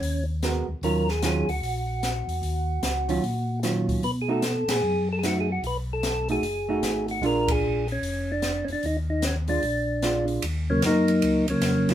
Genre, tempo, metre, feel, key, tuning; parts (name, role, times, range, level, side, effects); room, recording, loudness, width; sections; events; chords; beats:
soul jazz organ trio; 150 BPM; 4/4; swing 64% on 8ths; Eb minor; A4 = 440 Hz
percussive tonewheel organ; melody; 0.0-11.9 s; Db3 to B4; -25 LUFS; equal; slow rotary speaker
mellow tonewheel organ; bass; 0.0-11.9 s; F1 to B2; -29 LUFS; left 1 dB; chorus vibrato, slow rotary speaker
open jazz drum kit; drums; 0.0-11.9 s; hi-hat, kick drum, ride cymbal, snare drum; -32 LUFS; left 1 dB
hollow-body jazz guitar; accompaniment; 0.4-11.9 s; Eb3 to Bb4; -27 LUFS; right 3 dB
moderate studio reverb, RT60 0.5 s; band playing live in one room; -23 LUFS; side -11 dB against mid
0.0-10.4 A section; 10.4-11.9 B section
band accent 4.6, 7.4; tonewheel organ solo 10.4-11.9
0.0 Abm9; 0.8 Ebm9; 4.0 B7; 7.2 Bb7; 8.8 Ebsus2; 9.6 Bb7; 10.4 Ebm9
0.02 0.42 | 0.82 1.22 1.62 2.02 | 2.43 2.83 3.23 3.63 | 4.03 4.43 4.83 5.23 | 5.63 6.03 6.43 6.83 | 7.23 7.63 8.04 8.44 | 8.84 9.23 9.63 10.04 | 10.44 10.84 11.23 11.63